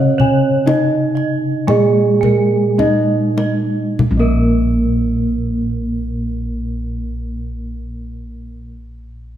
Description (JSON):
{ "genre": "Javanese gamelan", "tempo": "47-65 BPM", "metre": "4/4", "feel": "straight", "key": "unclear", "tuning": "A4 = 440 Hz", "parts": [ { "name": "gamelan-type bronze metallophone", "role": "melody", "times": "0.0-8.7 s", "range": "Bb3 to Ab4-25c", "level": "-19 LUFS", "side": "right 4 dB", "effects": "tape echo" }, { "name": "gamelan-type bronze metallophone", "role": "accompaniment", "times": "0.0-8.7 s", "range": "Db3-45c to Bb3", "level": "-21 LUFS", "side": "left 3 dB", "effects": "none" }, { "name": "gamelan-type bossed gongs", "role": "arpeggios", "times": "0.0-8.7 s", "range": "Bb4 to Ab5-25c", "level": "-23 LUFS", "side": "left 5 dB", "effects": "none" }, { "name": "gamelan-type bronze metallophone", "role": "arpeggios", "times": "0.0-8.7 s", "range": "Bb4 to Ab5-25c", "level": "-25 LUFS", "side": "right 3 dB", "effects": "none" }, { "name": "gamelan-type bossed gongs", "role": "bass", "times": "0.0-8.6 s", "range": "Bb1 to Db4-45c", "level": "-20 LUFS", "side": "equal", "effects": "none" }, { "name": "kendang", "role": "percussion", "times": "0.2-4.6 s", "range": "none", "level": "-20 LUFS", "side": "left 2 dB", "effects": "none" } ], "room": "moderate recital hall reverb, RT60 1.5 s", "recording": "none", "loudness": "-14 LUFS", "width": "side -11 dB against mid", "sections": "0.0-4.0 A section; 4.0-9.1 B section", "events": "slowing down 0.0-4.0", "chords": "none", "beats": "0.68 1.69 2.79 | 4.00 5.26 6.53 7.80" }